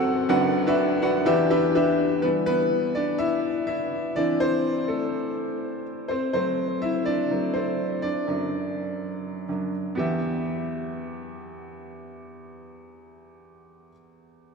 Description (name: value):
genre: pop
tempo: 124 BPM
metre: 4/4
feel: swing 56% on 16ths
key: E minor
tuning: A4 = 441 Hz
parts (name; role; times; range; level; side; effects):
- clear upright piano; solo; 0.0-14.5 s; F#1 to F#5; -23 LUFS; left 1 dB; none
room: wet cathedral reverb, RT60 4.4 s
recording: recorded in a church or concert hall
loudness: -22 LUFS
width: side -4 dB against mid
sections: 0.0-2.2 A section; 2.2-10.0 B section; 10.0-13.8 C section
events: upright piano solo 2.2-10.0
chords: 0.3 Bm/F#; 1.3 Em7; 4.2 Am/E; 6.1 F#dim; 8.0 D/F#; 10.0 Em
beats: | 0.30 0.78 1.26 1.75 | 2.23 2.72 3.20 3.68 | 4.17 4.65 5.14 5.62 | 6.10 6.59 7.07 7.56 | 8.04 8.52 9.01 9.49 | 9.98 10.46 10.95 11.43 | 11.91 12.40 12.88 13.37